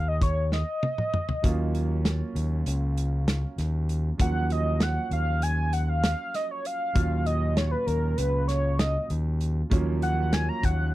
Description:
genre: progressive instrumental, band music in an uneven meter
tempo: 196 BPM (eighths)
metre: 9/8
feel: straight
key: Eb minor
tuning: A4 = 440 Hz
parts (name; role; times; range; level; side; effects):
- octave-doubled lead; melody; 0.0-10.9 s; Bb4 to Bb5; -29 LUFS; equal; chorus
- overdriven fingered electric bass; bass; 0.0-10.9 s; Db2 to D#2; -26 LUFS; equal; none
- loose indie drum kit; drums; 0.2-10.8 s; hi-hat, kick drum, snare drum, toms; -27 LUFS; equal; none
- warm concert grand piano; accompaniment; 1.4-10.9 s; Bb2 to F4; -33 LUFS; right 4 dB; none
room: little or no reverb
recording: dry, close 1970s-style studio recording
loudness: -24 LUFS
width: side -16 dB against mid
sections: 0.0-10.9 A section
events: analog synth lead solo 0.0-10.9; drum fill 0.5-1.4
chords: 0.0 N.C.; 1.4 Ebm7

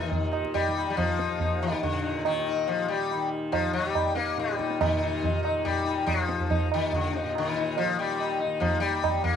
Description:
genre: indian classical, Hindustani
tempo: 141 BPM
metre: 3/4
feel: straight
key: Eb raga hamsadhwani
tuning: A4 = 440 Hz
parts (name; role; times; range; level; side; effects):
- sitar; melody; 0.0-9.4 s; D3 to Eb4; -27 LUFS; left 6 dB; none
- tanpura; drone; 0.0-9.4 s; Eb2 to Eb3; -34 LUFS; right 2 dB; none
- tabla; percussion; 0.1-9.4 s; none; -29 LUFS; right 4 dB; none
room: moderate echo chamber reverb, RT60 1.3 s, small room ambience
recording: 1960s-style stereo, vinyl crackle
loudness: -24 LUFS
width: side -8 dB against mid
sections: 0.0-4.8 A section; 4.8-9.4 B section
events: none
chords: none

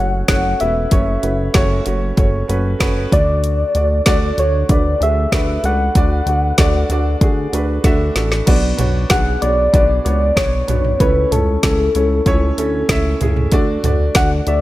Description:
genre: piano-driven pop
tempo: 95 BPM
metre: 4/4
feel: straight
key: unclear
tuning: A4 = 440 Hz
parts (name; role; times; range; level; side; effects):
- soft struck synth lead; melody; 0.0-14.6 s; A4 to F#5; -19 LUFS; left 1 dB; chorus
- clear upright piano; accompaniment; 0.0-14.6 s; B2 to E5; -21 LUFS; right 2 dB; none
- chorused synth bass; bass; 0.0-14.6 s; E1 to D2; -18 LUFS; equal; none
- deep house drum kit; drums; 0.3-14.6 s; crash cymbal, hi-hat, kick drum, snare drum, toms; -16 LUFS; equal; none
room: light reverb, digital ambience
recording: none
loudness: -13 LUFS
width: side -16 dB against mid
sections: 0.0-8.5 A section; 8.5-14.6 B section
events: drum fill 7.8-8.5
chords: 0.0 F#m; 3.1 D; 8.5 Bm; 11.0 A/C#; 13.5 D

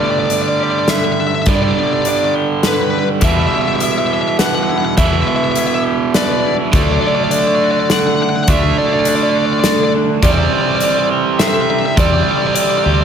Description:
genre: post-rock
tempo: 103 BPM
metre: 3/4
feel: straight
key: G major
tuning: A4 = 442 Hz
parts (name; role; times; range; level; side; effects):
- fuzz lead guitar; melody; 0.0-13.0 s; B4 to F#5; -18 LUFS; left 4 dB; distortion, slapback echo
- pedal steel guitar; sustained chords; 0.0-13.0 s; E3 to C5; -28 LUFS; left 6 dB; wide subtle chorus
- felt-muted upright piano; arpeggios; 0.0-13.0 s; A4 to E5; -26 LUFS; left 1 dB; none
- twangy electric guitar; arpeggios; 0.0-13.0 s; D3 to D5; -26 LUFS; left 8 dB; slapback echo
- overdriven electric guitar; riff; 0.0-13.0 s; E2 to D4; -16 LUFS; right 6 dB; none
- huge arena drum kit; drums; 0.3-12.7 s; hi-hat, kick drum, snare drum; -19 LUFS; left 1 dB; none
- growling fingered electric bass; bass; 1.5-13.0 s; D2 to G2; -17 LUFS; equal; overdrive
room: moderate large studio reverb, RT60 1.2 s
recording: none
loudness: -12 LUFS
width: side -7 dB against mid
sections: 0.0-13.0 A section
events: none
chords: 0.0 Gadd9; 3.2 Em; 6.7 D; 10.2 Cadd9/E

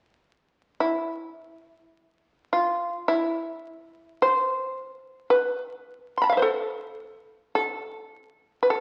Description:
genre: japanese traditional, Japanese chamber music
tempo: 53 BPM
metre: 2/4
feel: rubato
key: E miyako bushi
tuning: A4 = 440 Hz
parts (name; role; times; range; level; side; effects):
- shamisen; solo; 0.8-8.8 s; E4 to C6; -26 LUFS; equal; none
room: wet recital hall reverb, RT60 1.3 s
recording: very old 78 rpm record, vinyl crackle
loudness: -26 LUFS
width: mono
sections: 0.8-8.8 A section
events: none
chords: none

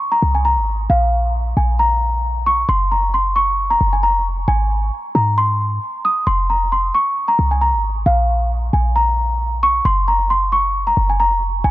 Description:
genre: hip hop, trap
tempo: 134 BPM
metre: 4/4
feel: half-time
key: Bb minor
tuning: A4 = 440 Hz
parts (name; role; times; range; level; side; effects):
- small celesta; melody; 0.0-11.7 s; F5 to Eb6; -16 LUFS; equal; low-pass filter
- clean 808-style bass; bass; 0.2-11.7 s; F1 to Ab2; -18 LUFS; equal; none
room: light reverb, small room ambience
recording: none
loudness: -15 LUFS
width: side -16 dB against mid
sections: 0.0-11.7 A section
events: none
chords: 0.0 Fm (rootless); 0.9 Bb5; 2.7 Gbmaj7#11; 4.5 Ab; 6.3 Fm; 8.1 Bb5; 9.9 Gbmaj7#11

